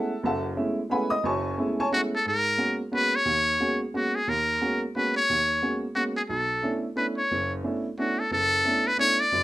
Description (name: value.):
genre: jazz.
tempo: 178 BPM.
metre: 3/4.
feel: swing 62% on 8ths.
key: unclear.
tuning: A4 = 440 Hz.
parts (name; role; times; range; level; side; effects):
warm upright piano; accompaniment; 0.0-9.4 s; F#1 to D#6; -27 LUFS; right 1 dB; none.
trumpet with metal mute; melody; 1.9-9.4 s; F#4 to D5; -23 LUFS; equal; none.
room: moderate studio reverb, RT60 0.6 s.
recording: rough home demo mix.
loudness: -23 LUFS.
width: side -16 dB against mid.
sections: 0.0-2.2 A section; 2.2-9.4 B section.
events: none.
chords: 0.0 B13sus4; 2.2 G#m11; 6.3 Bm11.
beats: | 0.22 0.56 0.89 | 1.23 1.57 1.90 | 2.24 2.58 2.91 | 3.25 3.59 3.92 | 4.26 4.60 4.93 | 5.27 5.61 5.94 | 6.28 6.62 6.95 | 7.29 7.63 7.96 | 8.30 8.64 8.97 | 9.31.